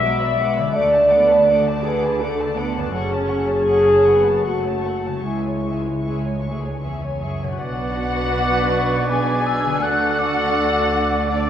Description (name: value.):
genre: cinematic, emotional film score for orchestra.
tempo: 74-85 BPM.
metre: 3/4.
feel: rubato.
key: B dorian.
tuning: A4 = 440 Hz.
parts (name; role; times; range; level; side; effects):
muted studio violin section; melody; 0.0-11.5 s; D5 to D6; -28 LUFS; left 2 dB; none.
muted studio violin section; second line; 0.0-11.5 s; D4 to A5; -29 LUFS; left 4 dB; none.
muted studio viola section; accompaniment; 0.0-11.5 s; F#3 to G#4; -28 LUFS; right 4 dB; none.
dark French horn section; sustained chords; 0.0-11.5 s; A3 to E5; -19 LUFS; equal; none.
concert harp; arpeggios; 0.0-11.5 s; F#2 to B4; -32 LUFS; left 5 dB; none.
muted studio cello section; bass; 0.0-11.5 s; C#2 to D3; -29 LUFS; right 2 dB; none.
muted studio double bass section; bass; 0.0-11.5 s; F#1 to D2; -28 LUFS; right 3 dB; none.
clear oboe; second line; 7.6-11.5 s; D5; -26 LUFS; right 1 dB; none.
warm clarinet; second line; 7.6-11.5 s; A4 to B4; -27 LUFS; left 1 dB; none.
hollow concert flute; second line; 8.4-11.5 s; C#6 to F#6; -25 LUFS; equal; none.
room: moderate concert hall reverb, RT60 2.2 s.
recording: none.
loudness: -17 LUFS.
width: side -10 dB against mid.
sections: 0.0-7.6 A section; 7.6-11.5 B section.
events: none.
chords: 0.0 Bm; 0.8 D; 2.9 F#m; 5.2 C#m; 7.6 Bm; 9.8 D.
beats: 0.04 | 0.76 1.50 2.22 | 2.94 3.67 4.44 | 5.24 6.04 6.83 | 7.61 8.36 9.10 | 9.82 10.57 11.31.